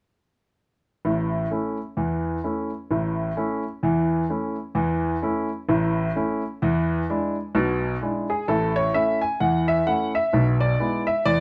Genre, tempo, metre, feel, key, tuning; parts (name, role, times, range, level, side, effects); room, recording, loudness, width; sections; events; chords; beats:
jazz, stride piano; 129 BPM; 4/4; swing 60% on 8ths; A major; A4 = 440 Hz
clear baby grand piano; solo; 1.0-11.4 s; A1 to G#5; -24 LUFS; equal
moderate studio reverb, RT60 0.9 s; -24 LUFS; mono
1.0-8.5 A section; 8.5-11.4 B section
1.0 A; 6.6 E7; 8.5 A; 10.3 E7/B
| 1.05 1.51 1.98 2.44 | 2.90 3.37 3.83 4.29 | 4.76 5.22 5.69 6.15 | 6.62 7.08 7.54 8.01 | 8.47 8.94 9.40 9.86 | 10.33 10.79 11.26